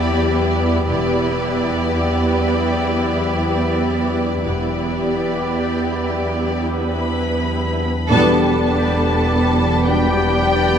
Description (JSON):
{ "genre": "cinematic, suspense film score", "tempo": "67 BPM", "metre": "4/4", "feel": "straight", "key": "E minor", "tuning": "A4 = 440 Hz", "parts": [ { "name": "warm symphonic violin section", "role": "second line", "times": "0.0-10.8 s", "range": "G4 to D5", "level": "-24 LUFS", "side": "left 2 dB", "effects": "none" }, { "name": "rich symphonic viola section", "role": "accompaniment", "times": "0.0-10.8 s", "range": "B3 to E4", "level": "-22 LUFS", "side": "right 2 dB", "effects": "none" }, { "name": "bubbling stepped-filter texture", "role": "sustained chords", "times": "0.0-10.8 s", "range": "G4 to B5", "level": "-24 LUFS", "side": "left 2 dB", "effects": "chorus, built-in reverb" }, { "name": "rich symphonic cello section", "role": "bass", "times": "0.0-10.8 s", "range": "E2", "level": "-23 LUFS", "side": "right 2 dB", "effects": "none" }, { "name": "metallic inharmonic drone", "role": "drone", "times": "0.0-10.8 s", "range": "E2", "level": "-23 LUFS", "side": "left 1 dB", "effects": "chorus, built-in reverb" }, { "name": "rich studio double bass section", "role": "bass", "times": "0.9-10.8 s", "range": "E1", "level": "-26 LUFS", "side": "right 2 dB", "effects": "none" }, { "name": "rich symphonic violin section", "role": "melody", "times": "6.7-10.8 s", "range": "G5 to B5", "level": "-24 LUFS", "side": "left 3 dB", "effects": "none" }, { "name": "mellow French horn section", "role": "sustained chords", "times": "8.1-10.2 s", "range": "B3 to D4", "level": "-25 LUFS", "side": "left 6 dB", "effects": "none" }, { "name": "warm trombone section", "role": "sustained chords", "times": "8.1-10.2 s", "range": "B2 to G3", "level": "-26 LUFS", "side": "right 1 dB", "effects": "none" } ], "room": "moderate scoring stage reverb, RT60 2.1 s", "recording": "none", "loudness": "-16 LUFS", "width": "side -8 dB against mid", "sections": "0.0-8.1 A section; 8.1-10.8 A section", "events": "band accent 8.1-9.0", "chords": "0.0 Em7", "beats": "0.01 | 0.89 1.77 2.65 3.54 | 4.46 5.37 6.29 7.20 | 8.11 9.00 9.88 10.77" }